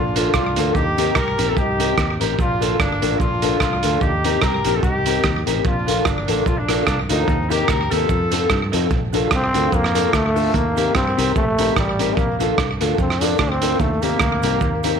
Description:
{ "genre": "ska", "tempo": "147 BPM", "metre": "4/4", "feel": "swing 56% on 8ths", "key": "Bb major", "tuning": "A4 = 440 Hz", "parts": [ { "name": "warm horn section", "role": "melody", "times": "0.0-8.7 s", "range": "Bb3 to Bb4", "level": "-23 LUFS", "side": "left 1 dB", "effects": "none" }, { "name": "fingered electric bass", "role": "bass", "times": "0.0-15.0 s", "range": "G1 to G2", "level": "-24 LUFS", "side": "equal", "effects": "none" }, { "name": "electric guitar through a small old amp", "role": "accompaniment", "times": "0.2-15.0 s", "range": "C4 to Bb4", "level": "-27 LUFS", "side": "right 8 dB", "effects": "spring reverb, slapback echo" }, { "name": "dark upright piano", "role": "stabs", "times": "0.2-15.0 s", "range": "Bb3 to Bb4", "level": "-24 LUFS", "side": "left 11 dB", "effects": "slapback echo" }, { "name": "crunchy breakbeat drum kit", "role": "drums", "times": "0.2-14.9 s", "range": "hi-hat, kick drum, rim click", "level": "-21 LUFS", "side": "right 3 dB", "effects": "slapback echo" }, { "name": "cabasa", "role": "percussion", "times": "0.2-14.9 s", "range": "none", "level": "-44 LUFS", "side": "right 20 dB", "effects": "none" }, { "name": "growling trombone", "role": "melody", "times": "9.4-15.0 s", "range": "G3 to D4", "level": "-21 LUFS", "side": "equal", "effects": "slapback echo" } ], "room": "light reverb", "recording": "1960s-style stereo with parts hard left and right", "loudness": "-16 LUFS", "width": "side -6 dB against mid", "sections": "0.0-8.9 A section; 8.9-15.0 B section", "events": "trombone solo 8.9-15.0", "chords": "0.0 Bbmaj7; 0.8 Eb6; 2.4 Bbmaj7; 4.0 Eb6; 5.6 Bbmaj7; 7.3 Eb6; 8.1 F7; 8.9 Bbmaj7; 10.5 Eb6; 12.2 Bbmaj7; 13.8 Eb6" }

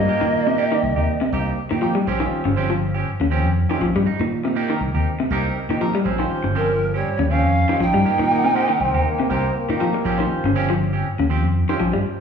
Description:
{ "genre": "afrobeat", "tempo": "120 BPM", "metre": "4/4", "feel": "swing 55% on 16ths", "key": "Bb dorian", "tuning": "A4 = 439 Hz", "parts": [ { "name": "mellow polished pan flute", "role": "melody", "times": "0.0-1.3, 6.6-9.3 s", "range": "Bb4 to G5", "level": "-21 LUFS", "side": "right 1 dB", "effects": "none" }, { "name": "bright trombone", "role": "second line", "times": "0.0-1.3, 6.6-9.3 s", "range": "F3 to Eb4", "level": "-26 LUFS", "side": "right 6 dB", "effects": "none" }, { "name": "barky tine electric piano", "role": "accompaniment", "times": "0.0-12.0 s", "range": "Bb3 to G5", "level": "-28 LUFS", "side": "right 3 dB", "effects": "phaser" }, { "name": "electric guitar through a small old amp", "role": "arpeggios", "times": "0.0-12.0 s", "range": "C3 to G3", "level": "-24 LUFS", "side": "left 4 dB", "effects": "none" }, { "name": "fingered electric bass", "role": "bass", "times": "0.0-12.0 s", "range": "G1 to Bb2", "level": "-22 LUFS", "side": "equal", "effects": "none" }, { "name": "clean electric guitar", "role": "stabs", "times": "0.1-11.8 s", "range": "F3 to G4", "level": "-27 LUFS", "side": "right 5 dB", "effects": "none" }, { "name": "bright bass trombone", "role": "second line", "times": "8.3-10.5 s", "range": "Bb3 to C4", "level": "-27 LUFS", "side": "left 3 dB", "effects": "none" } ], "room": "wet large studio reverb, RT60 1.4 s", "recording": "band playing live in one room, studio reverb", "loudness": "-18 LUFS", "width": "side -6 dB against mid", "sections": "0.0-12.2 A section", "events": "tine electric piano fill 5.1-6.1; stop 12.0", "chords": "0.1 Cm7; 2.1 Bbm69; 4.1 Cm7; 6.1 Bbm69; 8.1 Cm7; 10.1 Bbm69" }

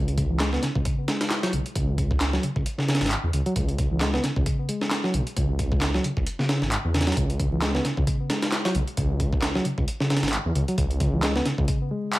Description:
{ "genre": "breakbeat, breaks", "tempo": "133 BPM", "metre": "4/4", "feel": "swing 56% on 16ths", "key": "C# minor pentatonic", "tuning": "A4 = 440 Hz", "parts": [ { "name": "detuned saw bass", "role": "bass", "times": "0.0-11.7 s", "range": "G#1 to E2", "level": "-26 LUFS", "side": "equal", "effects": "none" }, { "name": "breakbeat sampler-style drum kit", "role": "drums", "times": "0.1-12.2 s", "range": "hi-hat, kick drum, snare drum", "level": "-26 LUFS", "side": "equal", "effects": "none" }, { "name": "mellow reed electric piano", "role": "riff", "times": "0.2-12.2 s", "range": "C#3 to B3", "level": "-27 LUFS", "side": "equal", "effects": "tube saturation, low-pass filter, ping-pong delay" }, { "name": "electronic handclaps", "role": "drums", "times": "0.4-12.2 s", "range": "none", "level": "-30 LUFS", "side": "equal", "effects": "overdrive" } ], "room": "little or no reverb", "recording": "vinyl crackle", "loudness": "-22 LUFS", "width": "side -17 dB against mid", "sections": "0.0-12.2 A section", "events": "filter sweep on reed electric piano 0.0-12.2", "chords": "0.0 C#5" }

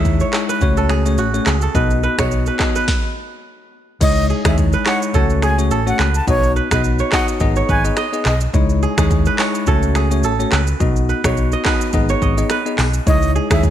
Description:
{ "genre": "afrobeats", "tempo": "106 BPM", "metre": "4/4", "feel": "swing 55% on 16ths", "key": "C# minor", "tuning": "A4 = 440 Hz", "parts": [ { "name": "bell-like tine electric piano", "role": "accompaniment", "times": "0.0-13.7 s", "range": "G#3 to D#5", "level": "-21 LUFS", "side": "left 4 dB", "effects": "lush chorus" }, { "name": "kora", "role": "riff", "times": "0.0-13.7 s", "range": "F#4 to E5", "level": "-23 LUFS", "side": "right 6 dB", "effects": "ping-pong delay" }, { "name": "fingered electric bass", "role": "bass", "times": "0.0-13.7 s", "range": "G#1 to D#2", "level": "-18 LUFS", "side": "equal", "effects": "none" }, { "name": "afro-pop drum kit", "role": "drums", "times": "0.0-13.7 s", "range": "crash cymbal, finger snaps, handclaps, hi-hat, kick drum, rim click, shaker, snare drum", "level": "-19 LUFS", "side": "equal", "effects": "vintage 12-bit sampler grit" }, { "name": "breathy bright concert flute", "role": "melody", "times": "4.0-8.4, 13.1-13.6 s", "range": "C#5 to A5", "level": "-22 LUFS", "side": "equal", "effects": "ping-pong delay" } ], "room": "moderate plate reverb, RT60 2.0 s", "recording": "bright 1980s-style digital production", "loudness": "-14 LUFS", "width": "side -11 dB against mid", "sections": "0.0-4.0 A section; 4.0-13.7 B section", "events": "stop 2.9-4.0", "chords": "0.0 C#madd9; 0.6 F#m/C#; 1.7 B; 2.9 N.C.; 4.0 C#madd9; 5.1 F#m/C#; 6.3 B; 7.4 G#m; 8.5 C#madd9; 9.7 F#m/C#; 10.8 B; 11.9 G#m; 13.1 C#madd9" }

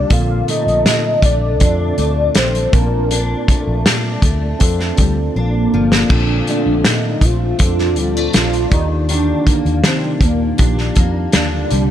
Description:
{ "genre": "indie pop, bedroom pop", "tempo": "80 BPM", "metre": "4/4", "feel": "straight", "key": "Bb major", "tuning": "A4 = 441 Hz", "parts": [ { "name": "warm velvety synth lead", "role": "melody", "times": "0.0-11.9 s", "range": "Bb3 to F5", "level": "-19 LUFS", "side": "equal", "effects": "tremolo, ensemble chorus" }, { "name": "mellow tine electric piano", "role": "accompaniment", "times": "0.0-11.9 s", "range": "D3 to A5", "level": "-25 LUFS", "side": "right 2 dB", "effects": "medium stereo tremolo, cassette tape" }, { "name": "picked steel-string acoustic guitar", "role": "accompaniment", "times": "0.0-11.9 s", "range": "Bb2 to D4", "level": "-23 LUFS", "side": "left 2 dB", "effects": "ensemble chorus, warbly pitch drift" }, { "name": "vintage muted fingered electric bass", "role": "bass", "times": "0.0-11.9 s", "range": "G1 to Eb3", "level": "-19 LUFS", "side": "equal", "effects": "none" }, { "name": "loose indie drum kit", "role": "drums", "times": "0.1-11.9 s", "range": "crash cymbal, hi-hat, kick drum, snare drum", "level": "-15 LUFS", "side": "equal", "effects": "none" } ], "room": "little or no reverb", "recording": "none", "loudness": "-13 LUFS", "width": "side -10 dB against mid", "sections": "0.0-6.1 A section; 6.1-11.9 A section", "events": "drum fill 5.4-6.1", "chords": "0.1 Bbmaj7; 8.7 Ebmaj7" }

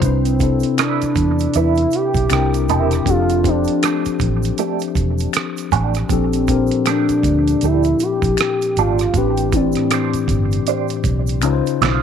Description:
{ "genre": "R&B, neo-soul", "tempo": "79 BPM", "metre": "4/4", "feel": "swing 61% on 16ths", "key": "C major", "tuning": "A4 = 440 Hz", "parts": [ { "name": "gliding portamento lead", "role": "melody", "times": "0.0-10.3 s", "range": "C4 to G4", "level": "-19 LUFS", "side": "right 2 dB", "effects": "chorus, tape echo" }, { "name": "mellow tine electric piano", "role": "accompaniment", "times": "0.0-12.0 s", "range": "A2 to D5", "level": "-20 LUFS", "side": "left 9 dB", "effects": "medium stereo tremolo" }, { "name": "vintage muted fingered electric bass", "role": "bass", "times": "0.0-12.0 s", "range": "E1 to E2", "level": "-20 LUFS", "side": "right 2 dB", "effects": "none" }, { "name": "dusty soul sampler-style drum kit", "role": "drums", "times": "0.0-12.0 s", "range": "hi-hat, kick drum, rim click, snare drum", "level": "-23 LUFS", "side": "right 4 dB", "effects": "none" }, { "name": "egg shaker and finger snaps", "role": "percussion", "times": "0.0-12.0 s", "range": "none", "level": "-32 LUFS", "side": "left 3 dB", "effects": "none" }, { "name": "mellow electric guitar", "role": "second line", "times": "0.8-12.0 s", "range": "A3 to C5", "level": "-24 LUFS", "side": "right 12 dB", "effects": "wah, tremolo, tape echo" } ], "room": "moderate spring reverb, RT60 2.0 s, digital ambience", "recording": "1960s-style stereo with parts hard left and right", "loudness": "-15 LUFS", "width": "side -8 dB against mid", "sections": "0.0-12.0 A section", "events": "drum fill 11.4-12.0", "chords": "0.0 Cmaj9; 2.3 C7; 3.1 F69; 6.1 Bbmaj13; 9.1 Am11; 11.4 Dbmaj9" }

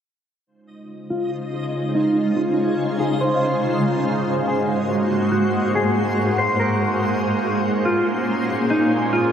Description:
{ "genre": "hip hop", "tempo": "142 BPM", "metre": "4/4", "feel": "half-time", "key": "Db major", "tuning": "A4 = 440 Hz", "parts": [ { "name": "shimmering ambient pad", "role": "sustained chords", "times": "1.1-9.3 s", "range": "Ab2 to C5", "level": "-20 LUFS", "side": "right 1 dB", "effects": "chorus, built-in reverb, phaser, low-pass filter" }, { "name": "backwards swelling texture", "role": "texture", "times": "1.3-9.3 s", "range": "Bb3 to Eb5", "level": "-31 LUFS", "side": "equal", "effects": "built-in reverb, analog chorus" }, { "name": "mellow electric guitar", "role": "melody", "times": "1.1-9.3 s", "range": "Eb4 to C5", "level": "-23 LUFS", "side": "left 1 dB", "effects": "lush chorus, low-pass filter, analog delay" } ], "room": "wet lush hall reverb, RT60 1.9 s, digital ambience", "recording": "dreamy mix soaked in reverb", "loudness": "-18 LUFS", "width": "side -8 dB against mid", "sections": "0.5-9.3 A section", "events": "filter sweep 0.5-9.3", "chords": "0.5 Dbmaj9; 3.8 Ab9; 7.2 Bbm9" }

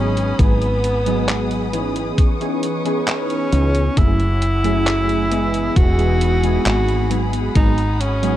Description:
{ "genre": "vaporwave", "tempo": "67 BPM", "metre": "4/4", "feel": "straight", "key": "unclear", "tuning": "A4 = 439 Hz", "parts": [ { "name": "warm tenor saxophone", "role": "melody", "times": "0.0-8.4 s", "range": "B3 to F#4", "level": "-22 LUFS", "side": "right 1 dB", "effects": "tape echo" }, { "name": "warbly lo-fi synth keys", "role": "accompaniment", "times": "0.0-8.4 s", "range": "E3 to D#5", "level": "-22 LUFS", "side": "equal", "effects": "lush chorus" }, { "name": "dark chamber string section", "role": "sustained chords", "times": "0.0-8.4 s", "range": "G#4 to D#6", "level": "-30 LUFS", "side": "left 2 dB", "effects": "vintage 12-bit sampler grit" }, { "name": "woody fretless electric bass", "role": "bass", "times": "0.0-8.4 s", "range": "E1 to C#2", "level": "-19 LUFS", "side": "equal", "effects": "tube saturation" }, { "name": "detuned 8-bit digital drum machine", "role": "drums", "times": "0.2-8.4 s", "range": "handclaps, hi-hat", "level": "-26 LUFS", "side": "equal", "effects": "vintage 12-bit sampler grit" }, { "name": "electronic kick drum", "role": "drums", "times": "0.4-7.7 s", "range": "none", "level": "-15 LUFS", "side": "equal", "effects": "vintage 12-bit sampler grit" } ], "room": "digital ambience", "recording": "none", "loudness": "-15 LUFS", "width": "side -13 dB against mid", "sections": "0.0-8.4 A section", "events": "none", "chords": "0.0 G#m7; 2.2 C#m9; 4.0 F#m9; 5.8 Emaj7; 7.1 G#m7" }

